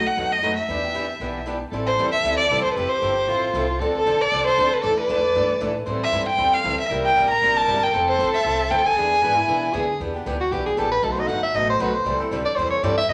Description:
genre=acoustic string swing (jazz manouche)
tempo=232 BPM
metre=4/4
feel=swing 56% on 8ths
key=A minor, E minor from 10.0 s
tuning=A4 = 441 Hz
part: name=warm violin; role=melody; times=0.0-9.7 s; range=A4 to Bb5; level=-22 LUFS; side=equal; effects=none
part: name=upright bass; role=bass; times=0.0-13.1 s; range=F1 to D3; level=-35 LUFS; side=equal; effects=none
part: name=picked steel-string acoustic guitar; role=accompaniment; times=0.2-13.1 s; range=B2 to B4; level=-33 LUFS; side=equal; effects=none
part: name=picked swing-style acoustic guitar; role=accompaniment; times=0.2-13.1 s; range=B2 to A4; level=-32 LUFS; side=equal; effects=none
part: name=breathy soprano saxophone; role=second line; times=1.7-13.1 s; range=E4 to F#5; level=-27 LUFS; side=equal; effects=none
room=wet large studio reverb, RT60 0.8 s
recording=none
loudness=-21 LUFS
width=mono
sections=0.0-1.7 A section; 1.7-10.0 B section; 10.0-13.1 C section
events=soprano saxophone solo 10.0-13.1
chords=0.0 B7; 0.7 Em7; 1.7 Am7; 2.8 Fmaj9; 3.8 Dm7; 4.8 E7sus4; 5.9 Am7; 6.9 C7; 7.9 Fmaj7; 9.0 E7; 10.0 Em7; 11.0 B7; 12.1 Am7/C

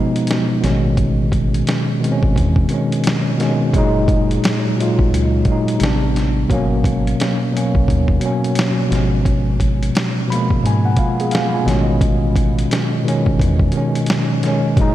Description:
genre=lo-fi hip hop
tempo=87 BPM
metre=4/4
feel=swing 63% on 16ths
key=unclear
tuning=A4 = 441 Hz
part: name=tine electric piano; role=accompaniment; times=0.0-14.9 s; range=A#2 to B5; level=-17 LUFS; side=equal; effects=fast stereo tremolo, cassette tape, low-pass filter
part: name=dusty soul sampler-style drum kit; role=drums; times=0.2-14.9 s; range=hi-hat, kick drum, snare drum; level=-20 LUFS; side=equal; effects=none
part: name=round analog bass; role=bass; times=0.6-14.9 s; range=F#1 to G#2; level=-20 LUFS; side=equal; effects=none
room=light reverb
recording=cassette tape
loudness=-14 LUFS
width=side -13 dB against mid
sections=0.0-14.9 A section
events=tine electric piano fill 9.9-12.0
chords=0.0 C#7; 0.6 Amaj9#11; 3.7 F#69; 5.8 Am11; 6.5 G#m11; 8.9 C#7/G#; 11.7 Amaj9#11

